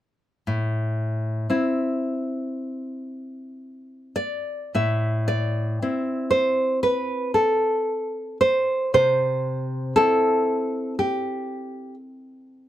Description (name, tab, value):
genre	romantic piece for solo classical guitar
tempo	48-61 BPM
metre	4/4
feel	rubato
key	A minor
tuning	A4 = 440 Hz
part	nylon-string guitar	solo	0.5-12.7 s	A2 to E5	-21 LUFS	equal	none
room	light reverb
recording	none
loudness	-21 LUFS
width	side -12 dB against mid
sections	0.5-4.8 A section; 4.8-12.7 B section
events	none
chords	0.5 Am; 8.9 C